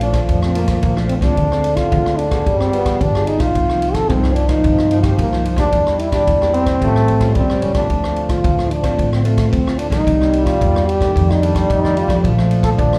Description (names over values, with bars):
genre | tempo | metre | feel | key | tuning
samba and choro | 111 BPM | 4/4 | straight | Bb major | A4 = 438 Hz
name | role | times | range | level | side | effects
breathy trombone | melody | 0.0-13.0 s | A3 to A4 | -21 LUFS | equal | slapback echo
breathy trombone | second line | 0.0-13.0 s | D3 to A3 | -24 LUFS | equal | slapback echo
nylon-string guitar | accompaniment | 0.0-13.0 s | F2 to Ab4 | -26 LUFS | equal | slapback echo
upright bass | bass | 0.0-13.0 s | G1 to G2 | -21 LUFS | equal | none
swinging big-band drum kit | drums | 0.0-13.0 s | kick drum, ride cymbal, rim click | -24 LUFS | equal | none
room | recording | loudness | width
moderate plate reverb, RT60 1.3 s, small room ambience | live gig heard through the venue's PA, club reverb | -16 LUFS | mono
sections
0.0-13.0 A section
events
none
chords
0.0 Bbmaj7; 1.4 Dm7b5; 2.5 G7b9; 3.6 Cm11; 5.7 Em7b5; 6.8 A7alt; 7.9 Dm7; 10.1 Cm7; 11.2 F13; 12.2 Bbmaj7